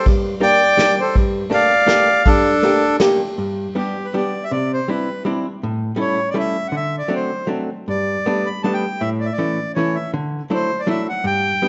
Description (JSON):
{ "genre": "musette waltz", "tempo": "161 BPM", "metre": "3/4", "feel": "swing 54% on 8ths", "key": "G minor, G major from 3.4 s", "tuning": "A4 = 442 Hz", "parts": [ { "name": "accordion", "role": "melody", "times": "0.0-11.7 s", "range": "D4 to B5", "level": "-20 LUFS", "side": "equal", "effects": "none" }, { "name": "archtop guitar, miked and amplified", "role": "accompaniment", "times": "0.1-11.7 s", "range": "G2 to G4", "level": "-23 LUFS", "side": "equal", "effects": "none" }, { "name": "vintage brush drum kit", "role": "drums", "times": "0.1-3.1 s", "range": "kick drum, ride cymbal, snare drum", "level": "-23 LUFS", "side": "equal", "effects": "none" } ], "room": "moderate recital hall reverb, RT60 1.4 s", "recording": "nothing above 7.9 kHz", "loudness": "-19 LUFS", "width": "mono", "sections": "0.0-3.4 A section; 3.4-11.7 B section", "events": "none", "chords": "0.0 Gmadd9; 3.4 G; 4.5 Cadd9; 5.6 A7; 6.7 D7; 7.9 Gadd9; 9.0 A; 10.1 Dadd9" }